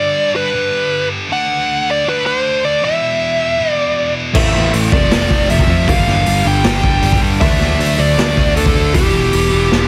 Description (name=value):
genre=hard rock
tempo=157 BPM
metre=4/4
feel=straight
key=unclear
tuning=A4 = 440 Hz
part: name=dark smooth lead guitar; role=melody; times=0.0-9.9 s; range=G4 to G5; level=-19 LUFS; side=equal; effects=overdrive
part: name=scooped high-gain guitar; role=riff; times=0.0-9.9 s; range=E2 to D4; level=-23 LUFS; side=equal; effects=distortion
part: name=cranked stack guitar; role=riff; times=4.3-9.9 s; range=G2 to F4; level=-25 LUFS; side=equal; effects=overdrive
part: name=distorted electric guitar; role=riff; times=4.3-9.9 s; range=E2 to D4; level=-25 LUFS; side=equal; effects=overdrive
part: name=picked electric bass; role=bass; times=4.3-9.9 s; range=E1 to G2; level=-19 LUFS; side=equal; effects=none
part: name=raw garage drum kit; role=drums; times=4.3-9.8 s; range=crash cymbal, hi-hat, kick drum, snare drum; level=-18 LUFS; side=equal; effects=none
room=light reverb, studio reverb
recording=dense, heavily limited modern master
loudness=-14 LUFS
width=mono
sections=0.0-9.9 A section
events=drum fill 9.7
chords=0.0 G; 1.3 D; 2.8 E5; 4.4 Am; 4.9 F; 5.9 G; 7.4 D; 8.9 Em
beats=0.15 0.53 0.91 | 1.29 1.68 2.06 2.44 | 2.82 3.21 3.59 3.97 | 4.35 4.74 5.12 5.50 | 5.88 6.26 6.65 7.03 | 7.41 7.79 8.18 8.56 | 8.94 9.33 9.71